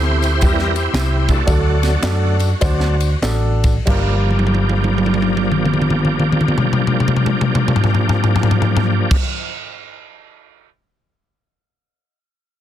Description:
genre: uptempo gospel.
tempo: 90-118 BPM.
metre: 4/4.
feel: swing 65% on 8ths.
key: G minor.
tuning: A4 = 441 Hz.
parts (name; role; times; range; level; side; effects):
warm grand piano; accompaniment; 0.0-9.2 s; G2 to C5; -25 LUFS; equal; none.
bright tonewheel organ; sustained chords; 0.0-9.2 s; E3 to C5; -21 LUFS; right 1 dB; slow rotary speaker, overdrive, chorus vibrato.
hollow-body short-scale fingered electric bass; bass; 0.0-9.2 s; G1 to F#2; -18 LUFS; equal; none.
crisp fusion drum kit; drums; 0.2-10.7 s; crash cymbal, kick drum, ride cymbal, snare drum, toms; -17 LUFS; left 1 dB; none.
tambourine and handclaps; percussion; 0.2-9.2 s; none; -32 LUFS; equal; none.
room: small room ambience.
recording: dense, heavily limited modern master.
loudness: -14 LUFS.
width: side -11 dB against mid.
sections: 0.0-3.9 A section; 3.9-9.2 B section.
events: slowing down 0.0-3.9; tonewheel organ solo 0.0-3.9; drum fill 4.2-9.1.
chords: 0.0 C; 1.5 D; 3.9 Gm7.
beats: 0.41 0.94 | 1.47 2.03 2.61 3.23 | 3.88 4.54 5.21 5.88 | 6.55 7.22 7.89 8.56.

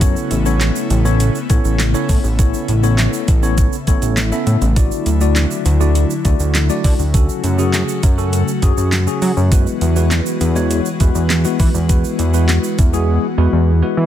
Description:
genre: dance-pop.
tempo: 101 BPM.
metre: 4/4.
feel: straight.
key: A major.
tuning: A4 = 440 Hz.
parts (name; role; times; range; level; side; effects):
tine electric piano; accompaniment; 0.0-14.1 s; G#3 to E5; -21 LUFS; left 2 dB; medium stereo tremolo, sidechain pumping.
airy breathy pad; sustained chords; 0.0-14.1 s; C#3 to F#4; -23 LUFS; left 3 dB; chorus, sidechain pumping.
fat analog bass; bass; 0.0-14.1 s; A1 to F#3; -15 LUFS; equal; sidechain pumping.
smooth R&B drum kit; drums; 0.0-12.9 s; handclaps, hi-hat, kick drum, snare drum; -17 LUFS; equal; none.
tube shaker; percussion; 0.0-13.1 s; none; -30 LUFS; right 12 dB; none.
room: digital ambience.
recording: none.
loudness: -13 LUFS.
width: side -11 dB against mid.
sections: 0.0-14.1 A section.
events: silent gap 13.1-14.1.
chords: 0.0 Aadd9; 4.8 Dadd9; 7.1 F#m; 9.5 Eadd9.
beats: | 0.01 0.61 1.20 1.79 | 2.39 2.98 3.58 4.17 | 4.76 5.36 5.95 6.55 | 7.14 7.74 8.33 8.92 | 9.52 10.11 10.71 11.30 | 11.89 12.49 13.08 13.68.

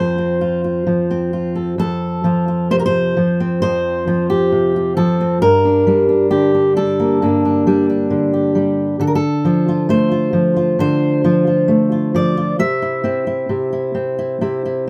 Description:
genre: folk, solo fingerstyle acoustic guitar.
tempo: 66 BPM.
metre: 4/4.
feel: straight.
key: F major.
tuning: A4 = 440 Hz.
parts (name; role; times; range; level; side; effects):
fingerpicked steel-string acoustic guitar; solo; 0.0-14.9 s; F2 to E5; -16 LUFS; equal; none.
room: moderate small room reverb, RT60 0.5 s.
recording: band playing live in one room.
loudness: -16 LUFS.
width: mono.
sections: 0.0-1.8 A section; 1.8-14.9 B section.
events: none.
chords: 0.0 F5; 1.8 F; 5.4 Gmadd9; 9.0 Dm7; 12.6 C.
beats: 0.87 | 1.80 2.72 3.63 4.53 | 5.43 6.33 7.23 8.12 | 9.01 9.90 10.80 11.70 | 12.60 13.51 14.43.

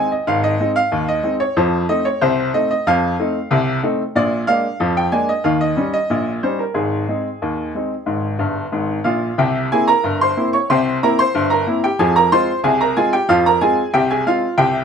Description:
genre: ragtime piano.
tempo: 92 BPM.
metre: 2/4.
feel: straight.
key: unclear.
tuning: A4 = 440 Hz.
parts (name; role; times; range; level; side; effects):
bright upright piano; solo; 0.0-14.8 s; G1 to Db6; -15 LUFS; equal; none.
room: moderate club reverb, RT60 0.9 s.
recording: dark, warm production.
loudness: -15 LUFS.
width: side -7 dB against mid.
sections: 0.0-9.4 A section; 9.4-14.8 B section.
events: upright piano fill 8.4-9.4.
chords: 0.0 Ab; 1.6 F7; 4.2 Bb7; 5.4 Eb7; 6.8 Ab; 9.4 C7; 12.0 Fm.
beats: | 0.26 0.91 | 1.56 2.21 | 2.86 3.50 | 4.15 4.80 | 5.45 6.10 | 6.76 7.42 | 8.07 8.73 | 9.39 10.04 | 10.70 11.35 | 12.00 12.64 | 13.29 13.94 | 14.59.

